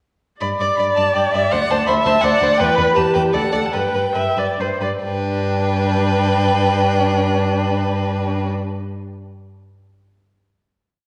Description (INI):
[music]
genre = quick classical-period movement for string quartet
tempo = 133-169 BPM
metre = 3/4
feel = rubato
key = G major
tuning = A4 = 440 Hz
[part]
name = warm violin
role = melody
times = 0.4-8.5 s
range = E5 to D6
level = -25 LUFS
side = equal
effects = none
[part]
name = warm violin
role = second line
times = 0.4-8.5 s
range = B4 to D5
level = -25 LUFS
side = equal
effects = none
[part]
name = warm viola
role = accompaniment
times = 0.4-8.5 s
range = D4 to E5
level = -22 LUFS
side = equal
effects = none
[part]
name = warm cello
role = bass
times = 0.4-8.5 s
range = D2 to G2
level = -24 LUFS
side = equal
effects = none
[sound]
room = wet recital hall reverb, RT60 1.8 s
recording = worn, warbling old tape, cassette tape, warbly pitch drift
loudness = -18 LUFS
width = mono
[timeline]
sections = 0.4-5.0 variation; 5.0-7.7 final chord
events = slowing down 2.1-5.0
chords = 0.4 G5; 1.5 D7; 2.6 Em; 3.3 D; 3.7 G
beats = | 0.42 0.79 1.15 | 1.52 1.88 2.23 | 2.60 2.96 3.33 | 3.73 4.15 4.58 | 5.03 5.47 5.92 | 6.37 6.81 7.26